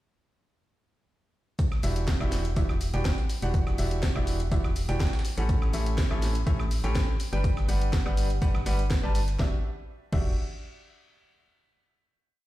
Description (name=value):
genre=piano house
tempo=123 BPM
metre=4/4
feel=straight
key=E dorian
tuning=A4 = 442 Hz
part: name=breakbeat sampler-style drum kit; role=drums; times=1.6-9.4 s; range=hi-hat, snare drum, tambourine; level=-46 LUFS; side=right 2 dB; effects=high-pass filter on perc, high-pass filter on snare, high-pass filter on hats, high-pass filter on room
part: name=electronic kick drum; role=drums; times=1.6-10.2 s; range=none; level=-27 LUFS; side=equal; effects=none
part: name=garage drum kit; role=drums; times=1.6-10.2 s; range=crash cymbal, hi-hat, shaker, snare drum, woodblock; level=-37 LUFS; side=right 1 dB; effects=none
part: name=bright grand piano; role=riff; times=1.8-10.3 s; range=A2 to A5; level=-33 LUFS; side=equal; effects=sidechain pumping, ping-pong delay
part: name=organ-like FM bass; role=bass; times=1.8-10.4 s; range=E1 to A1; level=-28 LUFS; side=equal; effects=sidechain pumping
room=little or no reverb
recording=played on a big sound system in a bare room, stone room reverb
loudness=-24 LUFS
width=side -16 dB against mid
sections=1.6-9.4 drop; 9.4-11.3 final chord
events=drop 1.6-9.4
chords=1.6 Em9; 5.2 A7; 7.2 Gmaj7; 9.4 Em9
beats=| 1.59 2.08 2.56 3.05 | 3.54 4.03 4.51 5.00 | 5.49 5.98 6.47 6.95 | 7.44 7.93 8.42 8.90 | 9.39 9.88